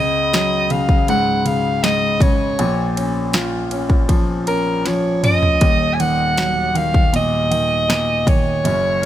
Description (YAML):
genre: pop ballad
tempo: 79 BPM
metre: 4/4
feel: straight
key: Eb minor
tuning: A4 = 441 Hz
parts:
  - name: mellow soprano saxophone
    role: melody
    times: 0.0-9.1 s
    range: Bb4 to Ab5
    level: -18 LUFS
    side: right 1 dB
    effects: none
  - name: warm grand piano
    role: accompaniment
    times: 0.0-9.1 s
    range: Eb1 to F4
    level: -19 LUFS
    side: equal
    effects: none
  - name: house drum kit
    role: drums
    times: 0.3-9.1 s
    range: kick drum, ride cymbal, snare drum, toms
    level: -18 LUFS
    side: equal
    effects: none
room: little or no reverb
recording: none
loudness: -15 LUFS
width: side -12 dB against mid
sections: 0.0-9.1 A section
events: drum fill 4.9-5.6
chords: 0.0 Dbsus4; 2.6 Bbm; 5.6 Ebm